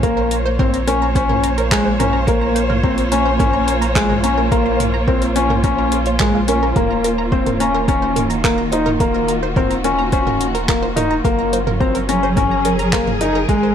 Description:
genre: piano and strings electronica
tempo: 107 BPM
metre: 4/4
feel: straight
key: Bb minor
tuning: A4 = 438 Hz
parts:
  - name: warm studio string section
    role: sustained chords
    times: 0.0-13.7 s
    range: Eb3 to Db5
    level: -21 LUFS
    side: right 1 dB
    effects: none
  - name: wide unison pluck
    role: arpeggios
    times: 0.0-13.7 s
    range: Ab4 to Bb5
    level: -26 LUFS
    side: right 5 dB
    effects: sidechain pumping, digital delay
  - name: felt-muted upright piano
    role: riff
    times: 0.0-13.7 s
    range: Ab3 to Eb4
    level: -18 LUFS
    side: left 3 dB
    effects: digital delay
  - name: warm sub bass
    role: bass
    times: 0.0-13.7 s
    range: Eb1 to Bb1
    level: -24 LUFS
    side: equal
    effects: sidechain pumping
  - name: deep house drum kit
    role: drums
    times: 0.0-13.6 s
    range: handclaps, hi-hat, toms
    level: -24 LUFS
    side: right 1 dB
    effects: overdrive
  - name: electronic kick drum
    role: drums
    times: 0.0-13.6 s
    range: none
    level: -20 LUFS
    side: equal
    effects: overdrive
room: light reverb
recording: dark, warm production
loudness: -14 LUFS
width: side -8 dB against mid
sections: 0.0-13.7 A section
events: none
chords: 0.0 Bbm; 6.8 Ebm7; 11.2 Gbmaj7

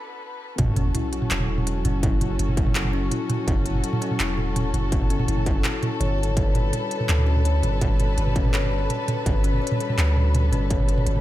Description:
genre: half-time drum and bass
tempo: 166 BPM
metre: 4/4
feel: half-time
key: F# phrygian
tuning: A4 = 440 Hz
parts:
  - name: dark studio string section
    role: sustained chords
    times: 0.0-11.2 s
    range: D3 to B4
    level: -30 LUFS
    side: left 2 dB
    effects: sidechain pumping
  - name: kalimba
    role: arpeggios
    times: 0.6-11.2 s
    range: C#4 to C#5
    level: -30 LUFS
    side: left 3 dB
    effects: dub echo
  - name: long sustained 808-style bass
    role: bass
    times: 0.6-11.2 s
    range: E1 to D2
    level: -23 LUFS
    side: equal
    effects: none
  - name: electronic kick drum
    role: drums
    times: 0.6-10.8 s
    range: none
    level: -24 LUFS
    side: equal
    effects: distortion
  - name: industrial drum kit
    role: drums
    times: 0.6-11.2 s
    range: handclaps, hi-hat, toms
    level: -27 LUFS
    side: right 2 dB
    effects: none
  - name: sub drop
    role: sound effects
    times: 0.6-2.0 s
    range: none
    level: -29 LUFS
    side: right 1 dB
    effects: none
room: light reverb, digital ambience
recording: echo-heavy mix, high-pass filter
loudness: -20 LUFS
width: side -14 dB against mid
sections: 0.6-11.2 A section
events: break 0.0-0.6; drop 0.6-11.2; impact 0.6-2.0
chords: 0.0 D5; 0.6 F#m7; 6.4 G

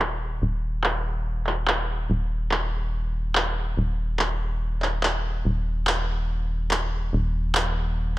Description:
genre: psychedelic trance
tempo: 143 BPM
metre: 4/4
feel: straight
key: unclear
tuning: A4 = 440 Hz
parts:
  - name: tight sequencer bass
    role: bass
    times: 0.0-8.2 s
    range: Eb1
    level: -26 LUFS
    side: equal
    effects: none
  - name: electronic handclaps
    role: drums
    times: 0.0-7.6 s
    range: none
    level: -26 LUFS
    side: equal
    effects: low-pass filter on hats, low-pass filter on snare, low-pass filter on room
room: light reverb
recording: none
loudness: -23 LUFS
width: side -17 dB against mid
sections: 0.0-8.2 A section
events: filter sweep on drum 0.0-8.2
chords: none

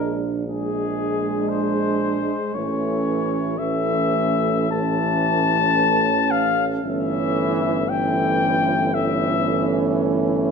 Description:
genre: classical, hymn-like piece for brass band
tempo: 57 BPM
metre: 4/4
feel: rubato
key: unclear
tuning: A4 = 442 Hz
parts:
  - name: mellow cornet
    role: melody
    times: 0.0-10.0 s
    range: Ab4 to A5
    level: -23 LUFS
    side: left 7 dB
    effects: none
  - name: mellow French horn section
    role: second line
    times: 0.0-10.5 s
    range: C#4 to D4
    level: -26 LUFS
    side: right 6 dB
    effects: none
  - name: clear trombone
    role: accompaniment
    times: 0.0-10.5 s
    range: E3 to Ab3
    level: -27 LUFS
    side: right 6 dB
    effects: none
  - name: warm euphonium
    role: accompaniment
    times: 0.0-10.5 s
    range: Ab3 to A3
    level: -28 LUFS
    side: left 2 dB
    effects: none
  - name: warm tuba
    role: bass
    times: 0.0-10.5 s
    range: G1 to Bb1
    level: -27 LUFS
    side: equal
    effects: none
room: moderate scoring stage reverb, RT60 1.7 s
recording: minimal, uncompressed stereo recording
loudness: -19 LUFS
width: side -5 dB against mid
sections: 0.0-10.5 A section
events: none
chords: 0.0 Bb7; 2.5 A; 6.8 A7/G

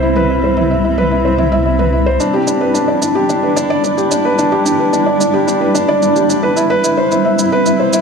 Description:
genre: piano and strings electronica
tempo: 110 BPM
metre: 4/4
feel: straight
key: E minor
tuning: A4 = 439 Hz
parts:
  - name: granular cloud pad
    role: sustained chords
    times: 0.0-8.0 s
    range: G3 to B5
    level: -16 LUFS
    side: equal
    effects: built-in reverb
  - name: felt-muted upright piano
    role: riff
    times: 0.0-8.0 s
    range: D4 to E5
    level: -14 LUFS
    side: equal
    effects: tape echo
  - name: dark detuned saw bass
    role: bass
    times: 0.0-2.2 s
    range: C2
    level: -18 LUFS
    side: equal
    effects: none
  - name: electronic toms and shaker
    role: drums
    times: 0.2-8.0 s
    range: none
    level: -24 LUFS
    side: right 2 dB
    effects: overdrive, high-pass filter on toms, high-pass filter on perc
room: moderate lush hall reverb, RT60 2.5 s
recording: none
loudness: -11 LUFS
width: side -5 dB against mid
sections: 0.0-2.2 A section; 2.2-8.0 B section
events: build-up 2.2-8.0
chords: 0.0 Cmaj7; 2.2 Em7; 6.6 Cmaj7

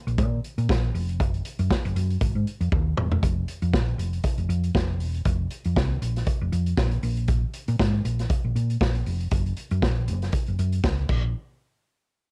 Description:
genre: disco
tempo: 118 BPM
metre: 4/4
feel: swing 56% on 16ths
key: unclear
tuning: A4 = 440 Hz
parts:
  - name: hollow-body short-scale fingered electric bass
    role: bass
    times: 0.1-11.3 s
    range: E1 to Bb2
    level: -27 LUFS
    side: equal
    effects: none
  - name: vintage drum kit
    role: drums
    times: 0.1-11.2 s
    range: crash cymbal, hi-hat, kick drum, snare drum, toms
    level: -28 LUFS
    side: equal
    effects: cassette tape
room: little or no reverb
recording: home recording on cassette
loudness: -25 LUFS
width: mono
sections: 0.0-3.2 A section; 3.2-11.3 B section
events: drum fill 2.7-3.2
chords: none

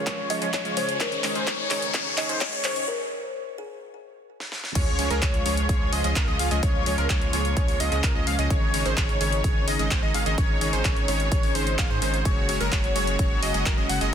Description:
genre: EDM, festival progressive house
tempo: 128 BPM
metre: 4/4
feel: straight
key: Db major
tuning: A4 = 444 Hz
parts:
  - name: clear studio string section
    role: sustained chords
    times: 0.0-14.1 s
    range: Db3 to Gb4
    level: -34 LUFS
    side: left 1 dB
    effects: sidechain pumping, low-pass filter
  - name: wide unison lead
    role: arpeggios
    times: 0.0-14.1 s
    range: Bb4 to Gb5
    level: -29 LUFS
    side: equal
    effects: wide subtle chorus, sidechain pumping, ping-pong delay
  - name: supersaw stab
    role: riff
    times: 0.0-14.1 s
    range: Eb3 to Gb5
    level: -30 LUFS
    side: right 1 dB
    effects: sidechain pumping, low-pass filter, ping-pong delay
  - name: saturated sub bass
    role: bass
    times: 0.0-14.1 s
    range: Gb1 to Ab2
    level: -28 LUFS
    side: equal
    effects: sidechain pumping, high-pass filter
  - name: riser and sub drop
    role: sound effects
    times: 0.0-6.6 s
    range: none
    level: -32 LUFS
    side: left 3 dB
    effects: none
  - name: big-room dance drum kit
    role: drums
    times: 0.1-14.1 s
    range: crash cymbal, handclaps, hi-hat, snare drum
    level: -30 LUFS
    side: left 1 dB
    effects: none
  - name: electronic kick drum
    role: drums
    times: 0.1-13.8 s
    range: none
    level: -25 LUFS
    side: equal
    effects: high-pass filter on kick
  - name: kalimba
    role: melody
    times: 0.3-3.8 s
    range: Ab4 to Eb5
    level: -32 LUFS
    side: left 2 dB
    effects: ping-pong delay
room: light reverb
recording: dense, heavily limited modern master, high-pass filter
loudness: -22 LUFS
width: side -8 dB against mid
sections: 0.0-4.8 A section; 4.8-14.1 B section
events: build-up 0.0-4.8; drum fill 0.0-2.9, 4.4-4.8; riser 0.0-2.9; filter sweep on supersaw synth 0.0-4.8; filter sweep on analog synth lead 0.0-4.8; filter sweep 0.0-4.8; break 2.9-4.8; drop 4.8-14.1; impact 4.8-6.6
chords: 0.0 Db; 1.0 Absus4; 4.8 Db; 8.5 Absus4; 12.3 Gbsus2

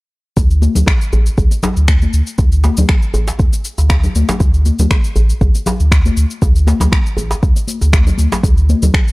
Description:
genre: afro house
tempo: 119 BPM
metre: 4/4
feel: swing 54% on 16ths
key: unclear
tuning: A4 = 440 Hz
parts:
  - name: warm sub bass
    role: bass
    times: 0.4-8.9 s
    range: A1 to D2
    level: -13 LUFS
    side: equal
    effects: transformer saturation, sidechain pumping
  - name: electronic cabasa and finger snaps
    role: drums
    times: 0.4-9.1 s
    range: none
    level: -22 LUFS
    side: left 1 dB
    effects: overdrive
  - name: electronic kick drum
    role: drums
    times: 0.4-9.0 s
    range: none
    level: -13 LUFS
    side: equal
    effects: none
  - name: congas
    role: percussion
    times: 0.4-8.9 s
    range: none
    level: -20 LUFS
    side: left 3 dB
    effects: none
  - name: djembe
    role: percussion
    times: 0.4-9.0 s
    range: none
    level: -21 LUFS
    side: right 1 dB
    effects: none
room: little or no reverb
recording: dry, gritty hardware recording, transformer saturation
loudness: -11 LUFS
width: side -22 dB against mid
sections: 0.4-9.1 A section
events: none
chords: none

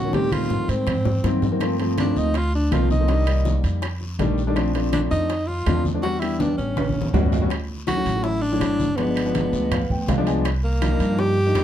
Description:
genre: Afro-Cuban jazz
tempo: 163 BPM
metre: 4/4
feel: straight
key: unclear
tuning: A4 = 440 Hz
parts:
  - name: breathy tenor saxophone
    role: melody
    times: 0.0-11.6 s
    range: Bb3 to G4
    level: -25 LUFS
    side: equal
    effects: none
  - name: warm concert grand piano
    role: accompaniment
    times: 0.0-11.6 s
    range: D#3 to Ab5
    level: -24 LUFS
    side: left 2 dB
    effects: none
  - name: upright bass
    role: bass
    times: 0.0-11.6 s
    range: G1 to A2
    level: -24 LUFS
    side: right 1 dB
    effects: none
  - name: bongos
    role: percussion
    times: 0.1-11.6 s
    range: none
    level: -33 LUFS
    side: left 5 dB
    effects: none
  - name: congas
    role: percussion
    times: 0.1-11.6 s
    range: none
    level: -28 LUFS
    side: equal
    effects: none
  - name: guiro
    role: percussion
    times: 0.1-11.6 s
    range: none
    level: -44 LUFS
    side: left 4 dB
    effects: none
  - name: timbales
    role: percussion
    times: 0.1-11.6 s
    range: none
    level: -32 LUFS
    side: right 7 dB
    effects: none
  - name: claves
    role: percussion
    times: 0.3-11.6 s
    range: none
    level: -39 LUFS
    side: left 1 dB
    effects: none
room: light reverb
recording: dark, warm production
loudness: -19 LUFS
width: side -10 dB against mid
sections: 0.0-7.5 A section; 7.5-11.6 B section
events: drum fill 0.1-1.6, 6.4-7.5; grand piano fill 9.3-10.4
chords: 0.1 Am7b5; 0.9 Ab9; 1.6 Gm11; 3.1 Cm9; 3.8 F13; 4.6 Bbmaj9; 6.0 Em7; 6.8 A13; 7.5 Dmaj7; 9.0 G7b9; 10.4 Cm11

